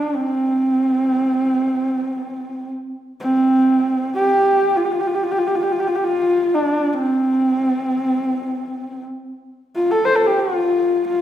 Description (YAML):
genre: mongolian traditional, Mongolian folk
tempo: free time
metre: none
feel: none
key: unclear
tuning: A4 = 440 Hz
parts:
  - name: dark horsehead fiddle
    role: solo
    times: 0.0-11.2 s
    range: C4 to C5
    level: -17 LUFS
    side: equal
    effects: none
room: wet recital hall reverb, RT60 1.7 s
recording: recorded in a church or concert hall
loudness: -16 LUFS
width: side -11 dB against mid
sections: 0.0-11.2 A section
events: none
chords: none